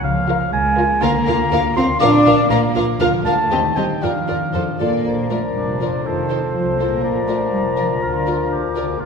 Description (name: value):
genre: cinematic, playful, whimsical film cue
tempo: 121 BPM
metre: 2/4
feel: straight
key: Bb major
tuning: A4 = 442 Hz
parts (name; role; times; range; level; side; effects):
- mellow oboe; second line; 0.0-9.1 s; C4 to D6; -22 LUFS; equal; none
- concert harp; arpeggios; 0.0-9.1 s; F2 to D6; -25 LUFS; left 5 dB; none
- dark chamber double bass section; bass; 0.0-9.1 s; F1 to F2; -26 LUFS; right 4 dB; none
- warm chamber cello section; bass; 0.0-8.5 s; D3 to D4; -22 LUFS; right 2 dB; none
- dark symphonic violin section; melody; 0.3-8.8 s; C5 to F5; -26 LUFS; left 4 dB; none
- warm chamber violin section; second line; 0.3-8.8 s; G4 to Bb4; -27 LUFS; left 2 dB; none
- dark chamber viola section; accompaniment; 0.3-8.8 s; C4 to F4; -26 LUFS; right 4 dB; none
- mellow French horn section; sustained chords; 5.0-9.1 s; D4 to Bb4; -25 LUFS; left 6 dB; none
- clear clarinet; second line; 5.1-9.0 s; Bb4 to D5; -29 LUFS; left 2 dB; none
- concert flute; second line; 5.1-9.0 s; A5 to Bb5; -28 LUFS; left 1 dB; none
- warm bassoon; accompaniment; 5.1-9.0 s; F3; -26 LUFS; left 2 dB; none
room: wet scoring stage reverb, RT60 1.8 s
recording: minimal, uncompressed stereo recording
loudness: -15 LUFS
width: side -5 dB against mid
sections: 0.0-5.1 A section; 5.1-9.1 B section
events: none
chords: 0.0 Bbm/Db; 1.0 Bb/D; 2.0 Bb; 3.0 Bb/D; 3.5 Cm/Eb; 4.0 Bb/F; 4.5 F; 5.1 Bb; 6.1 F7; 7.0 Bb; 8.0 Bb/D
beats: | 0.03 0.53 | 1.02 1.51 | 2.01 2.50 | 3.00 3.50 | 4.02 4.54 | 5.05 5.55 | 6.05 6.54 | 7.04 7.53 | 8.02 8.52 | 9.01